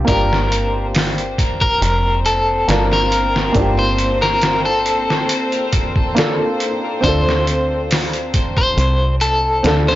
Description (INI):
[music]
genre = trip hop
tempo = 69 BPM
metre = 4/4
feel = straight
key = unclear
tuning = A4 = 440 Hz
[part]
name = felt-muted upright piano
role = accompaniment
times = 0.0-10.0 s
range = Bb3 to Bb4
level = -22 LUFS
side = equal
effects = harmonic tremolo, tape echo
[part]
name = deep dub fingered electric bass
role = bass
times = 0.0-10.0 s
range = F1 to D2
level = -20 LUFS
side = equal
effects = none
[part]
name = electric guitar at the edge of break-up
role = melody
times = 0.1-10.0 s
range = A4 to C5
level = -18 LUFS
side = left 1 dB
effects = tremolo, dub echo
[part]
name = warm studio violin section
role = sustained chords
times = 0.1-10.0 s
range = C4 to C5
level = -25 LUFS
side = left 2 dB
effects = none
[part]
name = trip hop sampler-style drum kit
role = drums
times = 0.1-10.0 s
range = hi-hat, kick drum, snare drum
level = -19 LUFS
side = equal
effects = none
[sound]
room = light reverb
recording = blown-out, overdriven recording, overdrive, nothing above 7.5 kHz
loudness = -14 LUFS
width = side -15 dB against mid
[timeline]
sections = 0.0-10.0 A section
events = none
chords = 0.1 Gm7; 7.0 Dm7